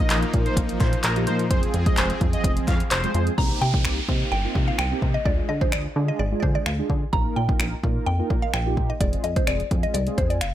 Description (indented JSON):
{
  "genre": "dance-pop",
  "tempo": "128 BPM",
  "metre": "4/4",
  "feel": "straight",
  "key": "C minor",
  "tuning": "A4 = 440 Hz",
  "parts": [
    { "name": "wide unison lead", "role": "melody", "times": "0.0-3.2 s", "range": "Bb4 to F5", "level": "-29 LUFS", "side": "equal", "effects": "sidechain pumping, tape echo" },
    { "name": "mellow synth brass", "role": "accompaniment", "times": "0.0-10.4 s", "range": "F3 to Bb4", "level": "-30 LUFS", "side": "right 2 dB", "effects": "chorus, sidechain pumping" },
    { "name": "soft supersaw", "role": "sustained chords", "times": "0.0-3.4 s", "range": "F3 to Ab4", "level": "-31 LUFS", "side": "left 1 dB", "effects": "sidechain pumping" },
    { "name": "plucky analog bass", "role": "bass", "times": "0.1-10.5 s", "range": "F1 to D3", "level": "-26 LUFS", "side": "equal", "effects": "sidechain pumping" },
    { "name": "punchy analog drum machine", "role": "drums", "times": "0.1-10.5 s", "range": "finger snaps, handclaps, hi-hat, kick drum", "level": "-23 LUFS", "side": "equal", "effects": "none" },
    { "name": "group handclap", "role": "percussion", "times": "0.1-3.0 s", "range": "none", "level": "-35 LUFS", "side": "left 2 dB", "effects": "none" },
    { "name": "mallet-like synth pluck", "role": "melody", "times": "3.4-10.5 s", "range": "C5 to Bb5", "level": "-28 LUFS", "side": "equal", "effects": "chorus, phaser" },
    { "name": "downlifter", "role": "sound effects", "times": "3.4-7.1 s", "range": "none", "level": "-33 LUFS", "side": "right 1 dB", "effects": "none" }
  ],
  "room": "digital ambience",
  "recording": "none",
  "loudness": "-20 LUFS",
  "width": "side -12 dB against mid",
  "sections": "0.0-3.4 A section; 3.4-10.5 B section",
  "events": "drop 0.0-3.4",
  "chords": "0.0 Bbsus4; 1.5 Fm; 3.4 Cm7; 5.3 Ddim; 7.1 Bbsus4; 9.0 Fm",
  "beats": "0.10 0.57 1.04 | 1.51 1.98 2.44 2.91 | 3.38 3.85 4.32 4.79 | 5.26 5.72 6.19 6.66 | 7.13 7.60 8.07 8.54 | 9.01 9.47 9.94 10.41"
}